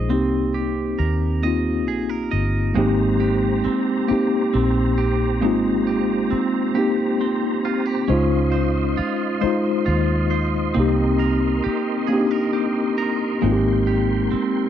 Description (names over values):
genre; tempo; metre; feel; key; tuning
R&B; 45 BPM (dotted quarters); 6/8; straight; Ab major; A4 = 439 Hz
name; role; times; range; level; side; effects
clean electric guitar; second line; 0.0-14.7 s; Ab3 to Eb5; -26 LUFS; right 10 dB; slapback echo
mellow tine electric piano; accompaniment; 0.0-14.7 s; Ab3 to C5; -20 LUFS; left 2 dB; medium stereo tremolo
vintage muted fingered electric bass; bass; 0.0-14.4 s; G1 to Eb2; -22 LUFS; equal; none
tonewheel organ; sustained chords; 2.7-14.7 s; F4 to C6; -30 LUFS; right 2 dB; chorus vibrato, fast rotary speaker
room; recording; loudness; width
digital ambience; dry, close 1970s-style studio recording; -18 LUFS; side -10 dB against mid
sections
0.0-2.8 A section; 2.8-14.7 B section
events
none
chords
0.1 Cm7; 2.8 Abmaj9; 8.1 Dbmaj9; 10.8 Cm7; 13.4 Abmaj9